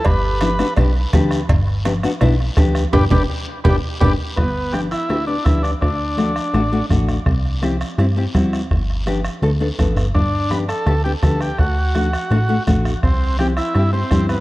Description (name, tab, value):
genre	latin, cumbia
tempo	166 BPM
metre	4/4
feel	straight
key	G major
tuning	A4 = 441 Hz
part	overdriven combo organ	melody	0.0-0.7, 2.9-6.9, 10.1-14.4 s	B3 to D5	-24 LUFS	equal	dub echo
part	clear clarinet	second line	0.0-0.7, 2.9-4.1 s	G4	-28 LUFS	right 1 dB	none
part	cowbell and timbales	percussion	0.0-4.1 s	none	-27 LUFS	right 5 dB	none
part	plucky analog bass	bass	0.1-14.4 s	G1 to G2	-19 LUFS	equal	none
part	bombo	percussion	0.1-14.4 s	none	-21 LUFS	equal	none
part	congas	percussion	0.1-14.3 s	none	-26 LUFS	equal	dub echo
part	guiro	percussion	0.1-14.4 s	none	-36 LUFS	left 2 dB	none
part	nylon-string guitar	accompaniment	0.4-14.4 s	A3 to A4	-23 LUFS	left 3 dB	none
room	light reverb, studio reverb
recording	echo-heavy mix, cassette tape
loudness	-15 LUFS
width	side -18 dB against mid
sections	0.0-4.4 A section; 4.4-14.4 B section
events	band accent 2.9-4.4; drum fill 3.3-4.4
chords	0.0 G; 5.8 D; 7.3 C; 8.7 G; 11.6 D; 13.0 C